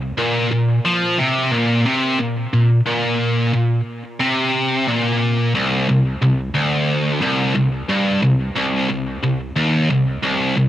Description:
metal; 90 BPM; 4/4; straight; A4 = 440 Hz
high-gain distorted guitar; solo; 0.0-10.7 s; C2 to F3; -16 LUFS; equal; distortion, cassette tape, analog delay
little or no reverb; home recording on cassette; -16 LUFS; side -12 dB against mid
0.0-5.5 A section; 5.5-10.7 B section
| 0.17 0.84 1.52 2.19 | 2.86 3.53 4.20 4.87 | 5.54 6.21 6.88 7.55 | 8.22 8.89 9.56 10.23

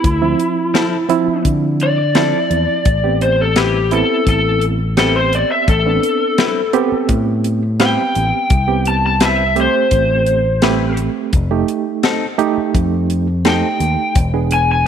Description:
straight-eighth soul blues; 85 BPM; 4/4; straight; A minor; A4 = 440 Hz
lead guitar through a small cranked amp; melody; 0.0-14.9 s; E4 to A5; -17 LUFS; left 2 dB; overdrive
bright reed electric piano; accompaniment; 0.0-14.9 s; F3 to G#4; -19 LUFS; right 9 dB; overdrive, fast tremolo
fingered electric bass; bass; 0.0-14.9 s; E1 to D3; -18 LUFS; left 1 dB
tight funk drum kit; drums; 0.0-14.7 s; hi-hat, kick drum, snare drum; -18 LUFS; equal
direct-recorded clean electric guitar; stabs; 0.7-13.7 s; F3 to B4; -23 LUFS; left 10 dB
light reverb, small room ambience; 1960s-style stereo with parts hard left and right; -13 LUFS; side -8 dB against mid
0.0-14.9 A section
lead electric guitar solo 0.0-14.9
0.0 Dm9; 2.9 Am9; 11.3 F7; 14.2 E7
| 0.04 0.75 1.46 2.16 | 2.87 3.57 4.28 4.98 | 5.69 6.39 7.10 7.80 | 8.51 9.21 9.92 10.63 | 11.33 12.04 12.74 13.45 | 14.16 14.87

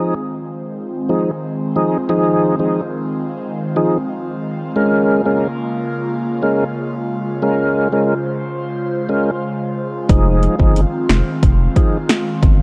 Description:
dancehall; 90 BPM; 4/4; straight; F minor; A4 = 440 Hz
tonewheel organ; accompaniment; 0.0-12.0 s; F3 to Bb4; -20 LUFS; equal; overdrive, chorus vibrato, slow rotary speaker, sidechain pumping
airy breathy pad; sustained chords; 0.1-12.6 s; Db3 to C5; -24 LUFS; equal; chorus, phaser, sidechain pumping
saturated sub bass; bass; 10.1-12.6 s; F1 to G1; -17 LUFS; equal
deep house drum kit; drums; 10.1-12.6 s; finger snaps, hi-hat, kick drum, rim click, snare drum; -17 LUFS; equal; overdrive
light reverb; worn, warbling old tape, cassette tape, warbly pitch drift; -18 LUFS; mono
0.0-12.6 A section
0.0 Fm7; 4.8 Bbm7; 10.1 Fm7
0.09 0.76 1.43 | 2.09 2.76 3.43 4.09 | 4.76 5.43 6.09 6.76 | 7.43 8.09 8.76 9.43 | 10.09 10.76 11.43 12.09

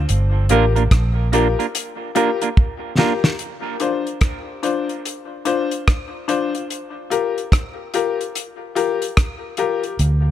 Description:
dub reggae; 73 BPM; 4/4; swing 62% on 16ths; A4 = 440 Hz
vintage muted fingered electric bass; bass; 0.0-1.5, 10.0-10.3 s; G1 to D2; -16 LUFS; right 1 dB
damped 70s drum kit; drums; 0.1-10.2 s; hi-hat, kick drum, rim click, snare drum; -18 LUFS; equal
semi-hollow electric guitar; accompaniment; 0.5-3.1 s; Bb3 to Bb4; -23 LUFS; right 8 dB; dub echo
clear upright piano; stabs; 0.5-9.9 s; D4 to C5; -22 LUFS; left 7 dB; dub echo
light reverb; -17 LUFS; side -11 dB against mid
0.0-3.4 A section; 3.4-10.3 B section
drum fill 2.6-3.4; break 3.4-10.0
0.1 Gm7; 3.4 Dm7; 6.7 Gm7
| 0.09 0.92 1.74 2.57 | 3.39 4.22 5.04 5.87 | 6.69 7.52 8.34 9.17 | 9.99

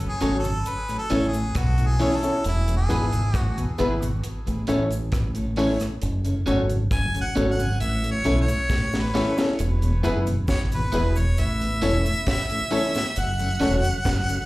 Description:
roots reggae; 67 BPM; 4/4; straight; A4 = 440 Hz
mellow tonewheel organ; accompaniment; 0.0-14.4 s; E2 to C#4; -31 LUFS; left 1 dB; chorus vibrato, slow rotary speaker, tape echo, slapback echo
deep reggae drum kit; drums; 0.0-14.5 s; hi-hat, kick drum, rim click, snare drum; -29 LUFS; equal
cabasa; percussion; 0.0-14.5 s; -45 LUFS; right 2 dB
bright harmonica; melody; 0.1-14.5 s; E4 to G#5; -28 LUFS; equal; tape echo, slapback echo
electric guitar at the edge of break-up; accompaniment; 0.2-13.7 s; B3 to C#5; -33 LUFS; right 3 dB; tape echo, slapback echo
dark grand piano; stabs; 0.2-13.8 s; B3 to C#5; -25 LUFS; left 1 dB; slapback echo
deep dub fingered electric bass; bass; 0.2-14.3 s; E1 to B1; -24 LUFS; equal
light reverb; live gig heard through the venue's PA, club reverb; -21 LUFS; side -19 dB against mid
0.0-9.6 A section; 9.6-14.5 B section
harmonica solo 0.0-9.6; drum fill 8.7-9.6
0.0 F#m; 0.7 A; 2.4 E; 4.2 A; 6.0 F#m; 7.8 A; 9.6 E; 11.4 A; 13.2 F#m
0.66 1.55 | 2.45 3.34 4.23 5.13 | 6.02 6.91 7.81 8.70 | 9.59 10.48 11.38 12.27 | 13.16 14.05

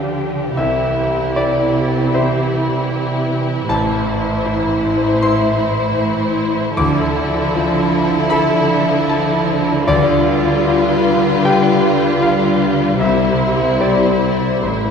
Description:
cinematic; 77 BPM; 4/4; rubato; A4 = 435 Hz
dark studio violin section; melody; 0.0-14.9 s; G4 to C5; -24 LUFS; left 2 dB
warm symphonic violin section; second line; 0.0-14.9 s; D4 to F4; -20 LUFS; equal
bright concert grand piano; accompaniment; 0.0-14.9 s; A1 to D6; -18 LUFS; left 1 dB
warm symphonic viola section; accompaniment; 0.0-14.9 s; E3 to A3; -22 LUFS; left 2 dB
warm symphonic cello section; bass; 0.0-14.9 s; A2 to D3; -20 LUFS; right 2 dB
wet scoring stage reverb, RT60 2.2 s; heard from further back in the room; -13 LUFS; side -6 dB against mid
0.0-14.9 A section
0.0 G7/D; 0.6 C; 3.7 Am; 6.8 Dmadd9; 9.9 G7/D; 13.0 C
| 0.58 1.36 2.14 2.91 | 3.69 4.46 5.22 5.99 | 6.77 7.54 8.31 9.09 | 9.87 10.64 11.45 12.23 | 13.01 13.81 14.63

